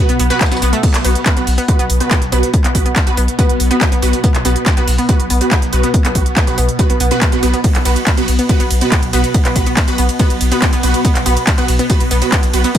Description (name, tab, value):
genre	driving peak-time techno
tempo	141 BPM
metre	4/4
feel	straight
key	unclear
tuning	A4 = 440 Hz
part	rave stab	stabs	0.0-12.7 s	B3 to B4	-20 LUFS	right 3 dB	chorus, built-in reverb, phaser, sidechain pumping, tape echo
part	swarming drone	drone	0.1-12.8 s	B2 to B3	-23 LUFS	equal	built-in reverb, phaser, sidechain pumping
part	analog pluck	riff	0.1-12.7 s	A3 to B4	-21 LUFS	left 1 dB	chorus, tube saturation, sidechain pumping, digital delay
part	saturated sub bass	bass	0.1-12.6 s	B1	-17 LUFS	equal	overdrive, sidechain pumping, low-pass filter
part	techno drum kit	drums	0.1-12.8 s	crash cymbal, handclaps, hi-hat, ride cymbal	-20 LUFS	right 1 dB	none
part	dusty soul sampler-style drum kit	drums	0.2-12.8 s	hi-hat, snare drum, tambourine	-29 LUFS	left 1 dB	high-pass filter on snare, high-pass filter on perc, high-pass filter on hats
part	electronic kick drum	drums	0.4-12.8 s	none	-14 LUFS	equal	overdrive
room	light reverb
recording	none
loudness	-11 LUFS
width	side -10 dB against mid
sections	0.0-12.8 A section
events	none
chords	0.0 B5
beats	0.41 | 0.83 1.26 1.68 2.11 | 2.54 2.96 3.39 3.81 | 4.24 4.66 5.09 5.51 | 5.94 6.37 6.79 7.22 | 7.64 8.07 8.49 8.92 | 9.34 9.77 10.20 10.62 | 11.05 11.47 11.90 12.32 | 12.75